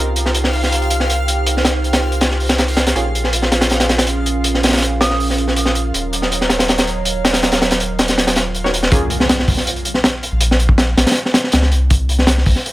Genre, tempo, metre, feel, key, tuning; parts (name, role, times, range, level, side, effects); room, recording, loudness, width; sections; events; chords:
drum and bass, jungle; 161 BPM; 4/4; straight; Bb minor; A4 = 440 Hz
warbly tape-like pad; sustained chords; 0.1-8.9 s; Gb3 to Bb5; -23 LUFS; right 3 dB; chorus, built-in reverb
filtered dub chord stab; stabs; 0.0-0.1, 3.0-3.1, 8.6-9.1 s; Bb3 to Db5; -24 LUFS; right 1 dB; chorus, dub echo
saturated sub bass; bass; 0.0-12.5 s; Eb1 to Db2; -18 LUFS; equal; tube saturation
backwards swelling texture; texture; 0.0-8.9 s; F4 to F5; -27 LUFS; equal; built-in reverb
crunchy breakbeat drum kit; drums; 0.2-12.7 s; hi-hat, kick drum, snare drum; -15 LUFS; equal; high-pass filter on kick, high-pass filter on hats, high-pass filter on snare, high-pass filter on room
glassy synth bell; melody; 5.0-5.2 s; Eb6; -28 LUFS; right 2 dB; chorus, dub echo
impact; sound effects; 9.0-10.4 s; -25 LUFS; equal
light reverb; -13 LUFS; side -17 dB against mid
0.0-8.9 A section; 8.9-12.7 B section
drop 8.9-12.7; impact 8.9-10.4
0.0 Cm7; 3.0 Bbm7; 5.9 Ebm7; 8.9 Bbm; 11.9 N.C.